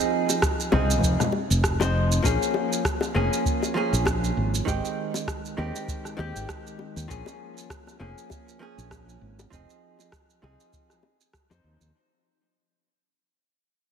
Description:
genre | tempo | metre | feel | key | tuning
sunset chillout | 99 BPM | 4/4 | swing 56% on 16ths | F minor | A4 = 440 Hz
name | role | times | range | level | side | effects
vintage hollow-body jazz guitar | accompaniment | 0.0-11.9 s | Eb3 to C5 | -28 LUFS | moving between left 6 dB and right 6 dB | auto-pan, digital delay
electronic shaker, rim click and congas | drums | 0.0-11.9 s | none | -29 LUFS | equal | none
bongos | percussion | 0.3-11.6 s | none | -32 LUFS | left 4 dB | none
electronic kick drum | drums | 0.4-11.5 s | none | -30 LUFS | equal | none
fingered electric bass | bass | 0.7-11.9 s | F1 to F2 | -25 LUFS | equal | none
room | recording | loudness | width
moderate concert hall reverb, RT60 2.3 s | heavily compressed radio sound, multiband compression | -22 LUFS | side -7 dB against mid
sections
0.0-11.9 A section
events
fade-out 0.0-11.9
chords
0.0 Fm7; 2.2 Bbm7; 4.7 Abmaj7; 7.1 Bbm7; 9.5 Fm7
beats
0.42 1.03 1.64 | 2.24 2.85 3.45 4.06 | 4.67 5.27 5.88 6.48 | 7.09 7.70 8.30 8.91 | 9.51 10.12 10.73 11.33

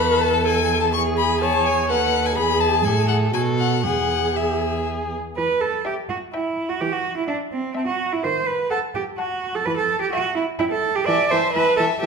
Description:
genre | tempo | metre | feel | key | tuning
quick classical-period movement for string quartet | 126 BPM | 3/4 | rubato | E major, E minor from 5.4 s | A4 = 438 Hz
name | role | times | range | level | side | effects
rich violin | melody | 0.0-12.1 s | E5 to C#6 | -23 LUFS | left 9 dB | none
warm violin | second line | 0.0-12.1 s | G#4 to F#5 | -27 LUFS | left 2 dB | none
dark viola | accompaniment | 0.0-12.1 s | D#3 to C#5 | -24 LUFS | right 2 dB | none
rich cello | bass | 0.0-12.1 s | D#2 to D5 | -22 LUFS | right 4 dB | none
room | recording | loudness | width
wet recital hall reverb, RT60 1.3 s | minimal, uncompressed stereo recording | -19 LUFS | side -5 dB against mid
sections
0.0-5.4 A section; 5.4-12.1 B section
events
none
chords
0.0 A5/E; 0.9 E; 1.9 B7/D#; 2.4 E; 2.9 N.C.; 3.3 B5; 3.8 E; 5.4 Em; 6.8 Am/E; 8.2 B7/D#; 9.7 Em; 11.1 Am/E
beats
0.46 | 0.94 1.42 1.90 | 2.37 2.85 3.34 | 3.84 4.36 4.86 | 5.37 5.86 6.34 | 6.81 7.29 7.76 | 8.24 8.71 9.19 | 9.66 10.13 10.60 | 11.07 11.54 12.01

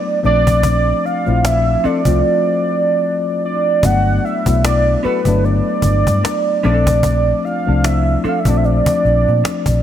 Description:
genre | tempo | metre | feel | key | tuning
R&B, neo-soul | 75 BPM | 4/4 | swing 58% on 16ths | unclear | A4 = 444 Hz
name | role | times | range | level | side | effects
warm velvety synth lead | melody | 0.0-9.8 s | B4 to F#5 | -17 LUFS | right 3 dB | chorus
mellow tine electric piano | accompaniment | 0.0-9.8 s | F3 to F4 | -19 LUFS | left 6 dB | none
vintage muted fingered electric bass | bass | 0.2-9.8 s | G1 to Bb2 | -16 LUFS | equal | none
cajon | drums | 0.2-9.8 s | none | -21 LUFS | equal | none
vintage hollow-body jazz guitar | second line | 1.8-9.5 s | B3 to A4 | -26 LUFS | right 1 dB | lush chorus
room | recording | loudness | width
moderate plate reverb, RT60 3.4 s | bright 1980s-style digital production | -13 LUFS | side -10 dB against mid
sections
0.0-9.8 A section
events
drums muted 2.2-3.8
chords
0.2 Bbmaj9; 3.8 Gmaj9; 6.6 Bbmaj9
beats
| 0.63 1.43 2.23 3.03 | 3.83 4.63 5.43 6.23 | 7.03 7.83 8.63 9.43

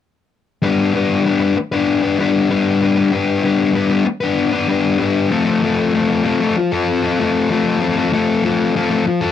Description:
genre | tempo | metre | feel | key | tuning
rock | 96 BPM | 4/4 | straight | G mixolydian | A4 = 440 Hz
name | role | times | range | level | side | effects
sludgy distorted guitar | riff | 0.6-9.3 s | F3 to B4 | -14 LUFS | left 4 dB | overdrive
room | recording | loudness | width
light reverb | dry, close 1970s-style studio recording | -14 LUFS | side -9 dB against mid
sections
0.6-9.3 A section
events
none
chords
0.6 G; 5.3 F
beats
| 0.62 1.25 1.88 2.50 | 3.13 3.75 4.38 5.00 | 5.63 6.25 6.88 7.50 | 8.13 8.76

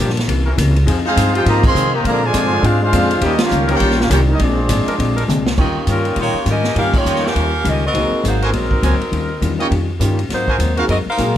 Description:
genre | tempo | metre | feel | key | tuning
jazz, big band swing | 204 BPM | 4/4 | swing 60% on 8ths | Eb mixolydian from 5.6 s | A4 = 442 Hz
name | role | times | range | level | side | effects
archtop guitar, miked and amplified | accompaniment | 0.0-11.4 s | G2 to Ab4 | -23 LUFS | left 5 dB | none
brilliant trombone section | sustained chords | 0.0-5.2 s | E3 to Bb4 | -25 LUFS | left 1 dB | none
upright bass | bass | 0.0-11.4 s | Ab1 to C3 | -18 LUFS | equal | none
swinging big-band drum kit | drums | 0.1-11.3 s | crash cymbal, hi-hat, kick drum, ride cymbal, snare drum, toms | -22 LUFS | equal | none
clear trumpet section | melody | 1.1-5.3 s | C4 to C6 | -19 LUFS | equal | none
clear trombone section | second line | 1.1-5.3 s | D3 to G4 | -20 LUFS | right 2 dB | none
warm concert grand piano | accompaniment | 5.6-11.3 s | Bb3 to Ab4 | -24 LUFS | right 1 dB | none
clear trumpet section | stabs | 5.6-10.9 s | F4 to Ab5 | -24 LUFS | right 3 dB | none
clear saxophone section | melody | 5.9-11.4 s | Gb3 to F5 | -19 LUFS | equal | none
room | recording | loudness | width
light reverb | close, detailed microphones | -14 LUFS | side -11 dB against mid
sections
0.0-5.6 A section; 5.6-11.4 B section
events
band accent 1.6, 3.4, 6.9; drum fill 5.3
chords
0.3 C7b9; 0.9 Fm7; 2.0 Bb9; 3.2 Eb9; 4.4 Bb9; 5.6 Eb9; 7.9 Ab9; 9.1 Eb9; 10.3 Ab9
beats
0.28 0.57 | 0.87 1.16 1.46 1.75 | 2.05 2.34 2.63 2.93 | 3.22 3.52 3.81 4.11 | 4.40 4.69 4.99 5.28 | 5.58 5.87 6.17 6.46 | 6.76 7.05 7.35 7.64 | 7.94 8.23 8.53 8.82 | 9.12 9.41 9.71 10.01 | 10.30 10.60 10.89 11.19

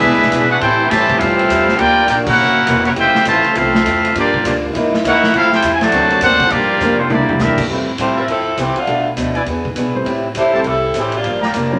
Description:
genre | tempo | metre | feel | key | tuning
jazz, big band swing | 204 BPM | 4/4 | swing 62% on 8ths | F major | A4 = 441 Hz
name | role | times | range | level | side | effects
brilliant trumpet section | melody | 0.0-7.6 s | A3 to A5 | -15 LUFS | equal | none
clear trombone section | second line | 0.0-7.6 s | C3 to G4 | -23 LUFS | equal | none
picked acoustic archtop guitar | accompaniment | 0.0-11.7 s | F2 to G#4 | -24 LUFS | equal | none
mellow saxophone section | sustained chords | 0.0-7.7 s | C3 to F4 | -25 LUFS | equal | none
upright bass | bass | 0.0-11.8 s | Fb1 to B2 | -29 LUFS | equal | none
swinging big-band drum kit | drums | 0.1-11.6 s | crash cymbal, hi-hat, kick drum, ride cymbal, snare drum, toms | -25 LUFS | equal | none
warm grand piano | accompaniment | 7.7-11.8 s | Gb3 to C5 | -24 LUFS | equal | none
warm saxophone section | melody | 8.0-11.4 s | E3 to C5 | -19 LUFS | equal | none
warm trumpet section | stabs | 8.2-11.8 s | E4 to Bb5 | -24 LUFS | equal | none
room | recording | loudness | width
wet studio reverb, RT60 0.8 s | none | -15 LUFS | mono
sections
0.0-7.7 A section; 7.7-11.8 B section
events
band accent 2.2; drum fill 6.8-7.4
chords
0.0 E7; 0.6 Am7; 1.8 Gm7; 2.4 Gb7#11; 3.0 Fmaj7; 4.2 Gm7; 4.7 Gb13; 5.3 Fmaj7; 5.9 D7b13; 6.5 Gm7; 7.1 C9; 7.7 Fmaj7; 8.9 Bm7b5; 9.5 E7; 10.1 Am7; 11.2 Gm7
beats
0.03 0.32 | 0.61 0.91 1.20 1.50 | 1.79 2.09 2.38 2.68 | 2.97 3.27 3.56 3.86 | 4.15 4.45 4.74 5.04 | 5.33 5.62 5.92 6.21 | 6.51 6.80 7.10 7.40 | 7.69 7.99 8.28 8.58 | 8.88 9.17 9.47 9.76 | 10.06 10.36 10.65 10.95 | 11.24 11.54

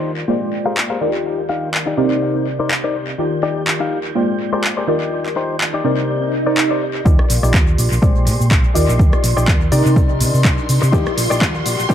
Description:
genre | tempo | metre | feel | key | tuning
filtered disco house | 124 BPM | 4/4 | swing 56% on 16ths | Eb major | A4 = 444 Hz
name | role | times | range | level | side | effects
funky polysynth comp | accompaniment | 0.0-11.9 s | C3 to G5 | -20 LUFS | equal | chorus, phaser, sidechain pumping, low-pass filter, tape echo
phased string machine | sustained chords | 0.0-11.9 s | C6 to G6 | -31 LUFS | equal | ensemble chorus, phaser, sidechain pumping, low-pass filter
direct-recorded clean electric guitar | riff | 0.0-11.9 s | Eb4 to F5 | -23 LUFS | left 4 dB | vintage 12-bit sampler grit, sidechain pumping, low-pass filter, tape echo
punchy analog drum machine | drums | 0.8-11.9 s | cabasa, handclaps, hi-hat, rim click | -22 LUFS | equal | sidechain pumping on perc, sidechain pumping on hats, tape echo
swell and riser | sound effects | 6.3-11.9 s | none | -25 LUFS | right 3 dB | none
hollow-body short-scale fingered electric bass | bass | 7.1-11.9 s | Bb1 to C3 | -17 LUFS | equal | sidechain pumping, low-pass filter
electronic kick drum | drums | 7.1-11.9 s | none | -15 LUFS | equal | none
tambourine | percussion | 7.1-11.9 s | none | -39 LUFS | left 3 dB | none
room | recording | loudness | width
light reverb, digital ambience | echo-heavy mix, high-pass filter | -14 LUFS | side -10 dB against mid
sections
0.0-7.1 A section; 7.1-11.9 B section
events
filter sweep 0.0-7.1, 7.1-11.9; swell 6.3-7.1; build-up 7.1-11.9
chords
0.3 Bb13; 1.0 Ebmaj7; 2.0 Cm9; 3.2 Ebmaj7; 4.2 Bb13; 4.9 Ebmaj7; 5.9 Cm9; 7.1 Ebmaj7; 8.0 Bb13; 8.8 Ebmaj7; 9.7 Cm9; 10.9 Ebmaj7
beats
0.29 0.77 | 1.25 1.74 2.22 2.71 | 3.19 3.67 4.16 4.64 | 5.12 5.61 6.09 6.58 | 7.06 7.54 8.03 8.51 | 9.00 9.48 9.96 10.45 | 10.93 11.41 11.90

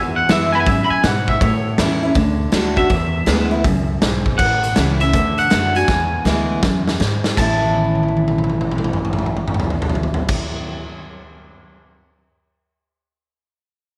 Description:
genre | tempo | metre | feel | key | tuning
rockabilly | 161 BPM | 4/4 | swing 65% on 8ths | A major | A4 = 440 Hz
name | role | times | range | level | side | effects
picked steel-string acoustic guitar | accompaniment | 0.0-10.9 s | E2 to F#4 | -23 LUFS | equal | none
upright bass | bass | 0.0-10.3 s | A1 to B2 | -24 LUFS | equal | none
twangy electric guitar | melody | 0.2-10.3 s | C#5 to B5 | -23 LUFS | equal | spring reverb, tape echo
raw garage drum kit | drums | 0.3-11.8 s | crash cymbal, hi-hat, kick drum, snare drum, toms | -22 LUFS | equal | none
room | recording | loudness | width
light reverb | none | -18 LUFS | mono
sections
0.0-4.4 A section; 4.4-7.4 B section; 7.4-10.4 C section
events
drum fill 5.9-7.4, 7.6-10.3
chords
0.0 E; 1.4 A; 2.2 D; 2.9 E; 4.4 A; 5.1 D; 5.9 E; 7.4 A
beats
0.30 0.67 1.04 | 1.42 1.79 2.16 2.53 | 2.90 3.28 3.65 4.02 | 4.39 4.76 5.14 5.51 | 5.88 6.26 6.63 7.00 | 7.37 7.75 8.12 8.49 | 8.87 9.24 9.61 9.98

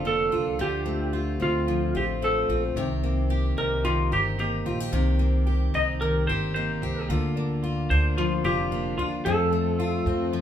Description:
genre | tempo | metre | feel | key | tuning
acoustic pop | 111 BPM | 4/4 | swing 55% on 16ths | Bb major | A4 = 440 Hz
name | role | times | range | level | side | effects
picked steel-string acoustic guitar | accompaniment | 0.0-10.4 s | F2 to G4 | -28 LUFS | left 4 dB | none
direct-recorded clean electric guitar | arpeggios | 0.0-10.4 s | Eb3 to G4 | -35 LUFS | right 5 dB | none
upright bass | bass | 0.0-10.4 s | F1 to F2 | -27 LUFS | equal | none
clean lap steel guitar | melody | 0.1-10.4 s | F4 to Eb5 | -26 LUFS | right 1 dB | none
room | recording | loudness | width
wet large studio reverb, RT60 1.0 s | band playing live in one room | -23 LUFS | side -10 dB against mid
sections
0.0-10.4 A section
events
none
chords
0.0 Bb; 0.6 Dm7; 2.8 Cm7; 7.1 Bb/D; 9.3 F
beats
0.05 | 0.59 1.14 1.68 2.22 | 2.76 3.30 3.84 4.38 | 4.92 5.47 6.01 6.55 | 7.09 7.63 8.17 8.71 | 9.25 9.79 10.33

